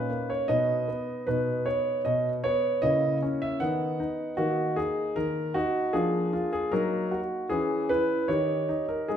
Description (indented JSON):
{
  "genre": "classical-period piano sonatina",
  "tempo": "77 BPM",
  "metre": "2/4",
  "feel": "straight",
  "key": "unclear",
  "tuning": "A4 = 440 Hz",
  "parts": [
    { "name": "clear grand piano", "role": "solo", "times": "0.0-9.2 s", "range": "B2 to F#5", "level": "-25 LUFS", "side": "equal", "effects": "none" }
  ],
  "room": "wet recital hall reverb, RT60 1.5 s",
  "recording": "minimal, uncompressed stereo recording",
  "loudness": "-25 LUFS",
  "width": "side -9 dB against mid",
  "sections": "0.0-9.2 A section",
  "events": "none",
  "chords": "0.5 B; 2.8 C#m69; 3.6 B/D#; 4.4 D#5; 5.9 A#7/E#; 6.7 D#m/F#; 7.5 C#m/E; 8.3 D#7"
}